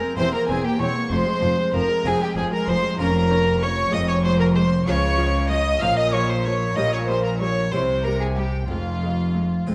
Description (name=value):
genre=classical, baroque-style concerto movement with solo episodes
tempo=64 BPM (dotted quarters)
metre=6/8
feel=straight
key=F minor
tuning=A4 = 440 Hz
part: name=rich chamber violin section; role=melody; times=0.0-9.7 s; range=F5 to F6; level=-33 LUFS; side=equal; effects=none
part: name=rich violin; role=melody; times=0.0-9.6 s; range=F4 to F5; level=-28 LUFS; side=equal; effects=none
part: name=harpsichord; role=accompaniment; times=0.0-9.7 s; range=E2 to G4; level=-36 LUFS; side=equal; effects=none
part: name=warm chamber viola section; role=accompaniment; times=0.0-9.7 s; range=F3 to Db4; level=-32 LUFS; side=equal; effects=none
part: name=warm studio violin section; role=second line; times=0.2-9.7 s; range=F4 to F5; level=-29 LUFS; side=equal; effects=none
part: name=rich chamber cello section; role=bass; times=0.2-9.7 s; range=E2 to Db3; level=-28 LUFS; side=equal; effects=none
part: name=rich chamber double bass section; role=bass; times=0.2-9.7 s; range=E1 to Db2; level=-27 LUFS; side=equal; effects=none
room=wet recital hall reverb, RT60 1.4 s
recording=dark, warm production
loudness=-21 LUFS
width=mono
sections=0.0-9.7 A section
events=none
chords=0.2 C7/E; 1.1 Fm; 3.0 Bbm/F; 3.9 Fm; 4.9 Db; 5.8 Bbm; 6.8 Gdim/Bb; 7.7 C; 8.7 Fm